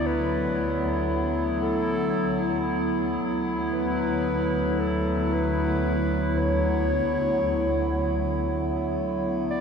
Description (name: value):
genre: ambient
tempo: free time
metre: none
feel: none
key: D major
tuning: A4 = 440 Hz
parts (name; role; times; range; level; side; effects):
- mellow clarinet; melody; 0.0-9.6 s; A4 to D5; -30 LUFS; equal; tape echo
- warbly tape-like pad; sustained chords; 0.0-9.6 s; D2 to E4; -25 LUFS; equal; chorus, built-in reverb
- dark studio double bass section; bass; 0.0-9.5 s; D2; -30 LUFS; equal; none
- hand-pumped harmonium; drone; 0.0-9.6 s; D3 to A3; -36 LUFS; equal; stereo widening
room: wet cathedral reverb, RT60 6.2 s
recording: none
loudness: -23 LUFS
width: side -6 dB against mid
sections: 0.0-9.5 A section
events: none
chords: 0.0 D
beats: free time